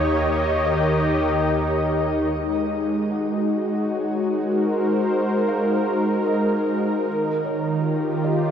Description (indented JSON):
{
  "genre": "ambient",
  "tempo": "76 BPM",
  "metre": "3/4",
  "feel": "straight",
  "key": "unclear",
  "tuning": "A4 = 440 Hz",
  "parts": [
    { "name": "breathy flute-like synth lead", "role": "melody", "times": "0.0-8.5 s", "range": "G#4 to D#5", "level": "-32 LUFS", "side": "right 2 dB", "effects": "ensemble chorus, shimmer reverb, diffuse ambient delay" },
    { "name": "warm analog pad", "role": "sustained chords", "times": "0.0-8.5 s", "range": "D#3 to D#5", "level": "-20 LUFS", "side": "equal", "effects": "chorus, shimmer reverb" },
    { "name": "felt-muted upright piano", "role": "arpeggios", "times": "0.0-8.5 s", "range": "C#5 to F#5", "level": "-38 LUFS", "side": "equal", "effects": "none" },
    { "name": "warm studio double bass section", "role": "bass", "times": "0.0-2.3 s", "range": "D#2", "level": "-28 LUFS", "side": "equal", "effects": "none" }
  ],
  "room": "wet huge ambient reverb, RT60 8.8 s",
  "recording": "none",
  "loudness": "-20 LUFS",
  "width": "side -8 dB against mid",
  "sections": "0.0-2.3 A section; 2.3-8.5 B section",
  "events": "none",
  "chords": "0.0 D#7; 2.3 G#7; 7.1 D#7"
}